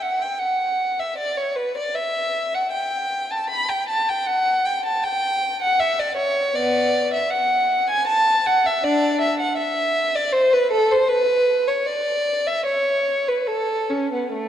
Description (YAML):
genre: classical, baroque-style suite movement for unaccompanied violin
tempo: 78 BPM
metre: 3/4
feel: rubato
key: A major from 6.5 s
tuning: A4 = 442 Hz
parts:
  - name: dark violin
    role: solo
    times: 0.0-14.5 s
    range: A3 to B5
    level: -19 LUFS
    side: equal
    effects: none
room: wet church reverb, RT60 2.9 s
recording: dark, warm production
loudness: -19 LUFS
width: side -10 dB against mid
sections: 0.0-14.5 A section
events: none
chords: none